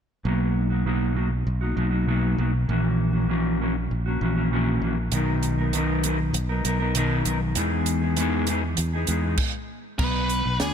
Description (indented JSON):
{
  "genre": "indie rock",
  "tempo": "98 BPM",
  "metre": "4/4",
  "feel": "straight",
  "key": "B major",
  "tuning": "A4 = 440 Hz",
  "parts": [
    { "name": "mellow electric guitar", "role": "riff", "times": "0.2-10.7 s", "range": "A#2 to A#4", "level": "-24 LUFS", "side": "equal", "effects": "double-tracked left and right" },
    { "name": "fingered electric bass", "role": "bass", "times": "0.2-10.7 s", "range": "A#1 to E2", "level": "-26 LUFS", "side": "equal", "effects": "none" },
    { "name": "compact cocktail drum kit", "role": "drums", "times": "5.1-10.7 s", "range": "crash cymbal, hi-hat, kick drum, snare drum", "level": "-27 LUFS", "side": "right 2 dB", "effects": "none" },
    { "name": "octave-fuzz lead guitar", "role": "melody", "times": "10.0-10.7 s", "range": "G#4 to B4", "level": "-26 LUFS", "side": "left 1 dB", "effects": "distortion" }
  ],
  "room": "light reverb, small room ambience",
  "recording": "none",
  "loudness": "-22 LUFS",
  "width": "side -8 dB against mid",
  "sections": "0.2-10.0 A section",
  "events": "stop 9.4-10.0",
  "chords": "0.2 Bmaj7; 2.7 F#7/A#; 5.1 Bmaj7; 7.6 Emaj7; 10.0 N.C.",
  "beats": "| 0.25 0.86 1.47 2.08 | 2.69 3.29 3.90 4.51 | 5.12 5.73 6.34 6.95 | 7.56 8.17 8.78 9.38 | 9.99 10.60"
}